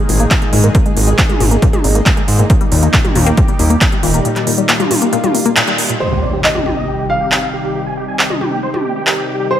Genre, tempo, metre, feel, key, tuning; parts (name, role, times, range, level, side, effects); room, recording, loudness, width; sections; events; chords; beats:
uplifting trance; 137 BPM; 4/4; straight; C minor; A4 = 440 Hz
lush unison pad; sustained chords; 0.0-9.6 s; Bb2 to Ab4; -20 LUFS; equal; chorus, phaser, sidechain pumping
tight sequenced synth; arpeggios; 0.0-5.9 s; Bb2 to Bb3; -19 LUFS; left 4 dB; chorus, sidechain pumping, digital delay
fat analog bass; bass; 0.1-4.2 s; Eb1 to Ab2; -13 LUFS; equal; sidechain pumping
big-room dance drum kit; drums; 0.1-9.2 s; handclaps, hi-hat, toms; -16 LUFS; equal; overdrive
electronic kick drum; drums; 0.3-3.9 s; -14 LUFS; equal; overdrive
big supersaw lead; melody; 6.0-9.6 s; G4 to Ab5; -22 LUFS; right 1 dB; sidechain pumping, low-pass filter, digital delay
dark grand piano; second line; 6.0-9.6 s; C5 to F5; -19 LUFS; equal; digital delay
impact; sound effects; 6.0-7.8 s; -22 LUFS; equal
light reverb; -11 LUFS; side -11 dB against mid
0.0-6.0 A section; 6.0-9.6 B section
filter sweep on synth arpeggio sound 0.0-6.0; band accent 5.6; impact 6.0-7.8; filter sweep on supersaw synth 6.0-9.6
0.0 Absus2; 2.5 Eb; 6.0 Cm
0.31 | 0.75 1.19 1.62 2.06 | 2.50 2.94 3.38 3.81 | 4.25 4.69 5.13 5.57 | 6.00 6.44 6.88 7.32 | 7.75 8.19 8.63 9.07 | 9.51